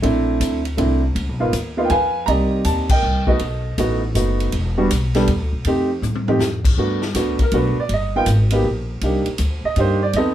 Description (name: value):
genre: jazz piano trio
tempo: 160 BPM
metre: 3/4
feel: swing 66% on 8ths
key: unclear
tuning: A4 = 440 Hz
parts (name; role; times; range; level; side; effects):
- warm upright piano; melody; 0.0-10.3 s; G3 to Bb5; -19 LUFS; right 2 dB; none
- upright bass; bass; 0.0-10.3 s; E1 to A2; -21 LUFS; equal; none
- swinging big-band drum kit; drums; 0.0-10.3 s; crash cymbal, hi-hat, kick drum, ride cymbal, snare drum, toms; -24 LUFS; left 1 dB; none
room: moderate small room reverb, RT60 0.6 s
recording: heard from further back in the room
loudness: -17 LUFS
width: side -11 dB against mid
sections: 0.0-6.8 A section; 6.8-10.3 B section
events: band accent 2.8; drum fill 6.0-6.4; upright piano solo 6.8-10.3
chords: 0.0 Bbmaj9#11; 1.2 C#13; 2.3 Cm9; 3.4 B7; 4.5 Em7; 5.7 F9; 6.8 Gmaj9; 7.9 Gaug; 9.0 Cm9